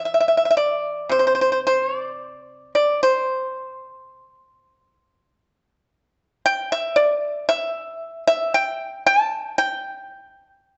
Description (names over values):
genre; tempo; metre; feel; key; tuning
chinese traditional, Chinese solo plucked strings; 57 BPM; 4/4; rubato; unclear; A4 = 440 Hz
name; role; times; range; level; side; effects
pipa; solo; 0.0-10.8 s; C3 to A5; -21 LUFS; equal; none
room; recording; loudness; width
moderate recital hall reverb, RT60 1.4 s; dark, warm production, nothing above 8.0 kHz; -21 LUFS; mono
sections
0.0-10.8 A section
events
none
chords
none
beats
0.02 1.13 2.23 | 3.29 4.36 5.42 6.45 | 7.49 8.54 9.58 10.63